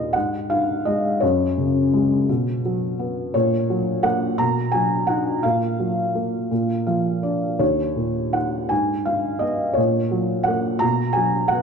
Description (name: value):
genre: classical, lyrical solo piano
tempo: 56 BPM (dotted quarters)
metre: 6/8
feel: rubato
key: unclear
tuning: A4 = 436 Hz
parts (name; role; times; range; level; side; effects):
- felt-muted upright piano; solo; 0.0-11.6 s; Eb2 to Bb5; -19 LUFS; equal; none
room: wet recital hall reverb, RT60 1.7 s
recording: dark, warm production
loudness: -19 LUFS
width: side -6 dB against mid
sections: 0.0-11.6 A section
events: felt piano fill 6.5-7.6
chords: 0.2 Ab5; 1.2 Gbsus2; 2.3 B5; 3.3 Gb/Bb; 4.4 B; 5.4 Gbmaj7/Bb; 6.5 Bb; 7.6 Eb5; 8.7 Abm; 9.8 Gb/Bb; 10.8 B5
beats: 0.15 | 1.22 2.29 | 3.35 4.38 | 5.43 6.51 | 7.61 8.71 | 9.78 10.83